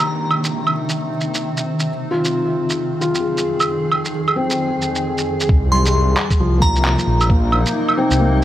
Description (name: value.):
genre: future garage.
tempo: 133 BPM.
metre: 4/4.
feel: swing 61% on 16ths.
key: C minor.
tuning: A4 = 440 Hz.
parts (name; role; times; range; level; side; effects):
glassy synth bell; melody; 0.0, 5.7-7.3 s; Bb5 to C6; -24 LUFS; left 1 dB; chorus, tape echo.
felt-muted upright piano; accompaniment; 0.0-8.4 s; F3 to Ab4; -22 LUFS; left 2 dB; sidechain pumping, analog delay.
granular cloud pad; sustained chords; 0.0-8.4 s; F2 to Ab4; -22 LUFS; equal; built-in reverb, sidechain pumping.
downlifter; sound effects; 0.0-1.9 s; none; -39 LUFS; equal; none.
electronic claves, shaker and handclaps; drums; 0.3-8.2 s; none; -21 LUFS; right 2 dB; small room ambience.
swelling detuned saw bass; bass; 5.5-8.4 s; Bb1 to C2; -17 LUFS; equal; sidechain pumping.
electronic kick drum; drums; 5.5-7.4 s; none; -16 LUFS; equal; small room ambience.
room: light reverb, digital ambience.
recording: vinyl crackle.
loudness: -16 LUFS.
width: side -13 dB against mid.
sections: 0.0-5.5 A section; 5.5-8.4 B section.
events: none.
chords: 0.0 Cm; 1.9 Fm7; 5.5 Cm7.